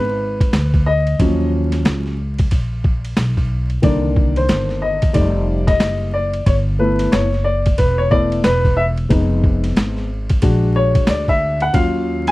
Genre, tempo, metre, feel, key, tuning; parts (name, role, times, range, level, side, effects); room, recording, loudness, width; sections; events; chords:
hip hop, jazz-hop; 91 BPM; 4/4; swing 61% on 16ths; A4 = 441 Hz
dark upright piano; accompaniment; 0.0-12.3 s; D3 to Ab5; -18 LUFS; left 1 dB
upright bass; bass; 0.0-12.3 s; E1 to Eb2; -19 LUFS; equal
boom bap sampler-style drum kit; drums; 0.4-12.3 s; hi-hat, kick drum, ride cymbal, snare drum; -17 LUFS; equal
little or no reverb; dry, close 1970s-style studio recording, vinyl crackle; -14 LUFS; side -19 dB against mid
0.0-12.3 A section
upright piano solo 0.0-12.3
0.0 Bb7b9 (rootless); 1.2 Ebm9; 3.8 Cm7; 5.2 F9; 6.5 G6; 9.1 Fm7b5; 10.4 Bbaug7; 11.7 Ebm9